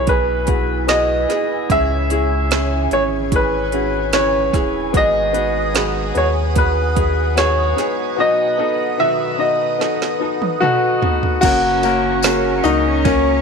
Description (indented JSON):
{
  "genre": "pop ballad",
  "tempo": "74 BPM",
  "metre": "4/4",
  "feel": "straight",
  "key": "unclear",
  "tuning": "A4 = 437 Hz",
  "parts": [
    { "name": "clear concert grand piano", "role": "melody", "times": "0.0-13.4 s", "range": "C#4 to E5", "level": "-18 LUFS", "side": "equal", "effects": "none" },
    { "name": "felt-muted upright piano", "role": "accompaniment", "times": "0.0-13.4 s", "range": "G#2 to B4", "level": "-22 LUFS", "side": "left 11 dB", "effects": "none" },
    { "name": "airy breathy pad", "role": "sustained chords", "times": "0.0-13.4 s", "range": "E4 to D#6", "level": "-26 LUFS", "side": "right 2 dB", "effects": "chorus, phaser" },
    { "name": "nylon-string guitar", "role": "arpeggios", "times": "0.0-13.4 s", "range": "F#2 to G#4", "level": "-26 LUFS", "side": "right 11 dB", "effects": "none" },
    { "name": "sub bass with octave", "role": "bass", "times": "0.0-13.4 s", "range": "D#1 to D#2", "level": "-22 LUFS", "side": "equal", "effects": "none" },
    { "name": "deep house drum kit", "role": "drums", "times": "0.1-13.2 s", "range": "crash cymbal, hi-hat, kick drum, ride cymbal, snare drum, toms", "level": "-21 LUFS", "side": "right 3 dB", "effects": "none" },
    { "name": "warm symphonic cello section", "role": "second line", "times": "11.4-13.4 s", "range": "C#4", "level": "-26 LUFS", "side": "right 11 dB", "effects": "none" },
    { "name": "tambourine", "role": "percussion", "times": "11.4-13.2 s", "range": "none", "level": "-30 LUFS", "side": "left 17 dB", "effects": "none" }
  ],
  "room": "moderate echo chamber reverb, RT60 2.7 s",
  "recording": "1960s-style stereo with parts hard left and right",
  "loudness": "-15 LUFS",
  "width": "side -5 dB against mid",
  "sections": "0.0-11.4 A section; 11.4-13.4 A section",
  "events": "drum fill 9.8-11.4",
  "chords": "0.0 E; 1.7 C#m; 4.9 G#m7; 8.2 B; 11.4 F#"
}